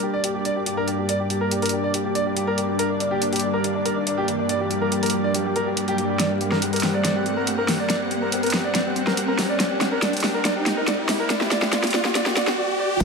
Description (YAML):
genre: heavy wobble dubstep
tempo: 141 BPM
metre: 4/4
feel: half-time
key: G harmonic minor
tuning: A4 = 440 Hz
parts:
  - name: clear concert grand piano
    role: melody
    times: 0.0-13.0 s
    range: D4 to D5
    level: -25 LUFS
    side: equal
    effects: vintage 12-bit sampler grit, dub echo
  - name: lush unison pad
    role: sustained chords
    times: 0.0-13.0 s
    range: G2 to F#5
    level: -25 LUFS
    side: equal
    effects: chorus, sidechain pumping
  - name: riser and impact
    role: sound effects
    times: 2.1-13.0 s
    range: none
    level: -28 LUFS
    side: equal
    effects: none
  - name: big-room dance drum kit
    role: drums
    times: 0.2-13.0 s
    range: crash cymbal, hi-hat, snare drum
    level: -24 LUFS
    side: equal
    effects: overdrive
  - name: wobble bass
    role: bass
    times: 13.0 s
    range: G1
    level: -22 LUFS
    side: right 1 dB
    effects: chorus, overdrive
  - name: electronic kick drum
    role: drums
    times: 13.0 s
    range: none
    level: -25 LUFS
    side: equal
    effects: overdrive
room: moderate lush hall reverb, RT60 1.7 s, digital ambience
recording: high-pass filter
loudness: -20 LUFS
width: side -4 dB against mid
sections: 0.0-13.0 A section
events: build-up 0.0-13.0; riser 2.1-13.0; drum fill 6.2-12.6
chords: 0.0 Gm